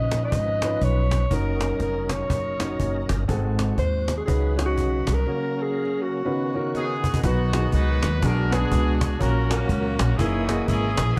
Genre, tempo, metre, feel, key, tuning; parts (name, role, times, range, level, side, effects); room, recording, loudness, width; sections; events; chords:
uptempo gospel; 122 BPM; 4/4; swing 60% on 8ths; F# major; A4 = 440 Hz
dark alto saxophone; melody; 0.0-7.0 s; F#4 to D#5; -30 LUFS; equal
warm grand piano; accompaniment; 0.0-11.2 s; G#2 to D#5; -31 LUFS; equal
overdriven tonewheel organ; sustained chords; 0.0-11.2 s; C#3 to D#5; -34 LUFS; equal; slow rotary speaker, chorus vibrato
upright bass; bass; 0.0-11.1 s; E#1 to D#2; -26 LUFS; equal
cajon; drums; 0.1-11.2 s; -30 LUFS; equal
clear horn section; melody; 6.7-11.2 s; A#3 to B4; -30 LUFS; equal
light reverb, studio ambience; dark, warm production; -23 LUFS; mono
0.0-7.2 A section; 7.2-11.2 B section
drum fill 6.7-7.2
0.0 C#9; 1.3 F#6; 3.3 G#7b9; 4.3 C#9sus4; 5.3 F#/C#; 6.2 C#9sus4; 7.2 B; 8.2 Bm6; 9.2 F#/A#; 10.2 F#13